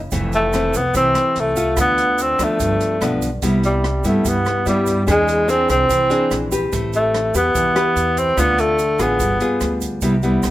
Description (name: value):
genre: bossa nova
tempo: 145 BPM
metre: 4/4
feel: straight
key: C major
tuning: A4 = 441 Hz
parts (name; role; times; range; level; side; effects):
- nylon-string guitar; accompaniment; 0.0-10.5 s; F2 to B4; -20 LUFS; left 1 dB; none
- upright bass; bass; 0.0-10.5 s; F1 to G2; -24 LUFS; right 1 dB; none
- open jazz drum kit; drums; 0.1-10.5 s; hi-hat, kick drum, rim click; -28 LUFS; right 2 dB; none
- egg shaker; percussion; 0.1-10.5 s; none; -33 LUFS; right 10 dB; none
- breathy tenor saxophone; melody; 0.3-9.8 s; G3 to B#3; -17 LUFS; equal; none
room: light reverb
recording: none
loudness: -15 LUFS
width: side -15 dB against mid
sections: 0.0-10.0 A section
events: none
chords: 0.1 Fmaj7; 1.8 Dm; 2.6 G7; 3.4 Cmaj7; 5.1 E7alt; 6.7 Am9; 8.4 Dm7; 9.2 G7b9